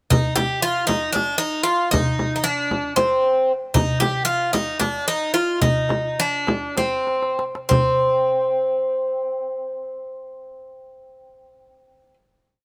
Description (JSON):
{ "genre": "Turkish makam ensemble", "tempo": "185-231 BPM (eighths)", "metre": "7/8", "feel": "straight", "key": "C makam huseyni", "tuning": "A4 = 440 Hz", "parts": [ { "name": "Greek bouzouki", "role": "melody", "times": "0.1-12.1 s", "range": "C4 to G4", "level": "-23 LUFS", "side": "equal", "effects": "none" }, { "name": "darbuka", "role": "percussion", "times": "0.1-8.0 s", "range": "none", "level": "-27 LUFS", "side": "equal", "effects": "none" }, { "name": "frame drum", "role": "percussion", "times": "0.1-8.0 s", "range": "none", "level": "-26 LUFS", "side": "equal", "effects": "none" } ], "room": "light reverb", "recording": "none", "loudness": "-21 LUFS", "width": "mono", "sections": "0.1-7.7 A section; 7.7-12.2 final note", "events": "slowing down 3.8-7.7; drum fill 7.1-7.7", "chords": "none", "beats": "| 0.11 0.37 0.63 0.89 1.15 1.41 1.67 | 1.93 2.19 2.45 2.71 2.97 3.23 3.49 | 3.75 4.01 4.27 4.54 4.80 5.07 5.34 | 5.62 5.90 6.19 6.48 6.77 7.08 7.39 | 7.71 8.03 8.36 8.68 9.00 9.33 9.65 | 9.97 10.30 10.62 10.94 11.27 11.59 11.91" }